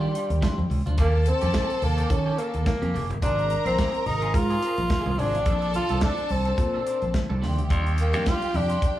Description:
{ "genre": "disco", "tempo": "107 BPM", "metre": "4/4", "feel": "swing 56% on 16ths", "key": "unclear", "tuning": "A4 = 440 Hz", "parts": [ { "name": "breathy tenor saxophone", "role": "melody", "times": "0.0-9.0 s", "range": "G3 to F4", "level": "-27 LUFS", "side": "left 1 dB", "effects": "none" }, { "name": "rich studio string section", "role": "second line", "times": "0.0-9.0 s", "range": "Ab3 to Bb5", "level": "-33 LUFS", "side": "equal", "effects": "none" }, { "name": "clean electric guitar", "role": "accompaniment", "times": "0.0-9.0 s", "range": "G3 to Bb4", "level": "-35 LUFS", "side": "right 3 dB", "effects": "lush chorus" }, { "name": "modern bright fingered electric bass", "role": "bass", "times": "0.0-8.7 s", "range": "Gb1 to Eb3", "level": "-25 LUFS", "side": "equal", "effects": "none" }, { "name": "modern studio drum kit", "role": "drums", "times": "0.2-9.0 s", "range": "hi-hat, kick drum, snare drum", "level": "-26 LUFS", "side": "equal", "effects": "none" }, { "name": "congas", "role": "percussion", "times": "0.4-8.7 s", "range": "none", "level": "-35 LUFS", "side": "left 2 dB", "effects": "none" } ], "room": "light reverb, studio reverb", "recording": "small room ambience", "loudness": "-22 LUFS", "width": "side -13 dB against mid", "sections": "0.0-9.0 A section", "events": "none", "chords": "0.0 Ebmaj9 (rootless); 1.0 Eb7; 3.2 Ab6; 5.5 Bbmaj9; 7.4 Ebmaj9", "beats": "0.42 | 0.98 1.54 2.10 2.66 | 3.22 3.78 4.34 4.90 | 5.46 6.02 6.58 7.14 | 7.70 8.26 8.82" }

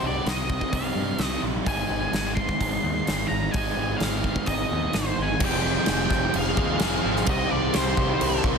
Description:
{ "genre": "rock, shoegaze and dream pop", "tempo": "128 BPM", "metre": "4/4", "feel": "straight", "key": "unclear", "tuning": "A4 = 440 Hz", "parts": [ { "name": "octave-fuzz lead guitar", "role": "melody", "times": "0.0-8.4 s", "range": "C5 to C6", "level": "-29 LUFS", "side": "equal", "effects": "distortion, slapback echo" }, { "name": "crunchy overdriven guitar", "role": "riff", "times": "0.0-8.6 s", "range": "F2 to Ab4", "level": "-29 LUFS", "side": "right 13 dB", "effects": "reverse reverb" }, { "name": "overdriven electric guitar", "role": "riff", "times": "0.0-8.6 s", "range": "F2 to Ab4", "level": "-30 LUFS", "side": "left 13 dB", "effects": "analog chorus" }, { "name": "growling picked electric bass", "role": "bass", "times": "0.0-8.6 s", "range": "F1 to G2", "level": "-30 LUFS", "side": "equal", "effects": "overdrive" }, { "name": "huge arena drum kit", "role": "drums", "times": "0.3-8.6 s", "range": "crash cymbal, hi-hat, kick drum, snare drum", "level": "-27 LUFS", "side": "equal", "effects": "soft clipping on kick" }, { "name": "ethereal airy pad", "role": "sustained chords", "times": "6.4-8.6 s", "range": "Ab4 to Eb6", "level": "-34 LUFS", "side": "left 2 dB", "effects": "none" }, { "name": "raw garage guitar", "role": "riff", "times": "5.4-8.6 s", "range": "F2 to C4", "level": "-30 LUFS", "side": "right 1 dB", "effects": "overdrive" } ], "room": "studio ambience", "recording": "dense, heavily limited modern master", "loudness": "-22 LUFS", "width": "side -6 dB against mid", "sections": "0.0-5.4 A section; 5.4-8.6 B section", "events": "none", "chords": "0.0 Cm; 1.7 Ab; 5.4 Fm7; 7.3 Cm7", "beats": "0.27 0.73 1.20 | 1.67 2.14 2.61 3.08 | 3.54 4.01 4.48 4.95 | 5.42 5.88 6.35 6.82 | 7.28 7.75 8.22" }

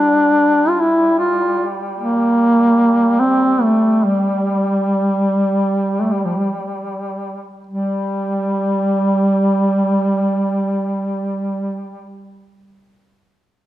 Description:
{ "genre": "caucasian folk, Caucasian lament", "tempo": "48-77 BPM", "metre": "3/4", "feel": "rubato", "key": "G dorian", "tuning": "A4 = 441 Hz", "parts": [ { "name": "mellow duduk", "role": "melody", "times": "0.0-12.0 s", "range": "F3 to F4", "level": "-15 LUFS", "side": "equal", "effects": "none" }, { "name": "warm duduk", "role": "drone", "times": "0.0-12.1 s", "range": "G3", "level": "-25 LUFS", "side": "equal", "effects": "none" } ], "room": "wet recital hall reverb, RT60 1.8 s", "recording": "minimal, uncompressed stereo recording", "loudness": "-14 LUFS", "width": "side -14 dB against mid", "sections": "0.0-7.7 A section; 7.7-11.2 B section", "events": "slowing down 1.9-7.7", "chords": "none", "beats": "0.36 1.16 | 1.95 2.75 3.59 | 4.48 5.44 6.50 | 7.68 8.87 10.02" }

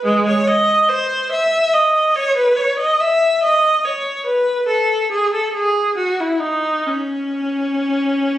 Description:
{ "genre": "classical, baroque-style suite movement for unaccompanied viola", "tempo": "64-73 BPM", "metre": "4/4", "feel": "rubato", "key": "C# minor", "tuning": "A4 = 440 Hz", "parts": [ { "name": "rich viola", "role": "solo", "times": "0.0-8.4 s", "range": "G#3 to E5", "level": "-15 LUFS", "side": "equal", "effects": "none" } ], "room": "moderate stone room reverb, RT60 1.3 s", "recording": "recorded on a phone in the room, studio reverb, compression", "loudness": "-15 LUFS", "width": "side -13 dB against mid", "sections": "0.0-8.4 A section", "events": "none", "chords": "none", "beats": "| 0.05 0.91 1.75 2.59 | 3.44 4.27 5.12 5.98 | 6.87 7.80" }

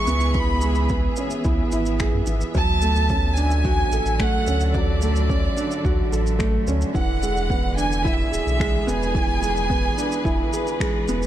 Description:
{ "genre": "piano and strings electronica", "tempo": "109 BPM", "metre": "4/4", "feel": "straight", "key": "unclear", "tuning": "A4 = 440 Hz", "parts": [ { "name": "warm chamber violin section", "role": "melody", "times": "0.0-10.8 s", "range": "D5 to C#6", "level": "-26 LUFS", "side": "right 1 dB", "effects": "none" }, { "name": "rich studio string section", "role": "sustained chords", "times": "0.0-11.3 s", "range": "D3 to E5", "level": "-30 LUFS", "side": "equal", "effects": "sidechain pumping" }, { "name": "felt-muted upright piano", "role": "riff", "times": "0.0-11.3 s", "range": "E3 to A4", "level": "-25 LUFS", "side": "right 2 dB", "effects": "ping-pong delay" }, { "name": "warm sub bass", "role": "bass", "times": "0.1-11.2 s", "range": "D1 to F#2", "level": "-23 LUFS", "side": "equal", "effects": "tube saturation, sidechain pumping" }, { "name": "electronic shaker and finger snaps", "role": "drums", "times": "0.1-11.3 s", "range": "none", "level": "-34 LUFS", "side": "equal", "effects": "studio reverb" }, { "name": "electronic kick drum", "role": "drums", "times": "0.3-10.9 s", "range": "none", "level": "-24 LUFS", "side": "equal", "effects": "studio reverb" } ], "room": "light reverb, studio ambience", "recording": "dark, warm production", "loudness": "-19 LUFS", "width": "side -12 dB against mid", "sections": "0.0-11.3 A section", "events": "band accent 10.8", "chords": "0.0 C#m7; 2.5 Dmaj7; 7.0 E7", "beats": "| 0.35 0.90 1.45 2.00 | 2.55 3.10 3.65 4.20 | 4.75 5.30 5.85 6.40 | 6.95 7.50 8.05 8.60 | 9.15 9.71 10.26 10.81" }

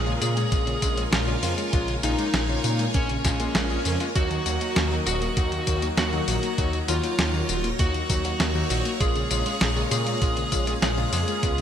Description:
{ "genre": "synthwave", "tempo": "99 BPM", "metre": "4/4", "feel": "straight", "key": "unclear", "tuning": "A4 = 440 Hz", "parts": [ { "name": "fuzz lead guitar", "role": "melody", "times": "0.0-11.6 s", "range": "Db4 to Ab4", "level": "-29 LUFS", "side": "equal", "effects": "distortion, ping-pong delay" }, { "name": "soft synth bell", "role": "second line", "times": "0.0-11.6 s", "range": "Db4 to Ab4", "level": "-36 LUFS", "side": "left 1 dB", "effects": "none" }, { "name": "string machine, full ensemble", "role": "sustained chords", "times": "0.0-11.6 s", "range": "Gb3 to Cb6", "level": "-32 LUFS", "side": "equal", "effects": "phaser, ensemble chorus, sidechain pumping" }, { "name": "wide detuned saw bass", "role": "bass", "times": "0.0-11.6 s", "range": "Eb1 to Bb2", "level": "-27 LUFS", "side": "equal", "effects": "chorus, sidechain pumping" }, { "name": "thumb-piano-like synth pluck", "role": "arpeggios", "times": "0.1-11.6 s", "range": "Db3 to F4", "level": "-35 LUFS", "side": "right 1 dB", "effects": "chorus, ping-pong delay" }, { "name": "warm electric grand piano", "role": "stabs", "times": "0.1-11.6 s", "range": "Gb3 to Ab4", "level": "-32 LUFS", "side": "left 4 dB", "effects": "wide subtle chorus" }, { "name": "clean 12-bit digital drum machine", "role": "drums", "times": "0.1-11.6 s", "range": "hi-hat, snare drum, tambourine", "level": "-28 LUFS", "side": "left 1 dB", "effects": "none" }, { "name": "electronic kick drum", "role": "drums", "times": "0.5-11.6 s", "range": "none", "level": "-25 LUFS", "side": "equal", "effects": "none" } ], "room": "light reverb, digital ambience", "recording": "bright 1980s-style digital production", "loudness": "-22 LUFS", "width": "side -9 dB against mid", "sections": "0.0-11.6 A section", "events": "none", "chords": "0.0 Bbm7; 4.2 Ebm; 9.0 Bbm7", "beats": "0.52 1.13 | 1.73 2.34 2.94 3.55 | 4.16 4.76 5.37 5.97 | 6.58 7.19 7.79 8.40 | 9.01 9.61 10.22 10.82 | 11.43" }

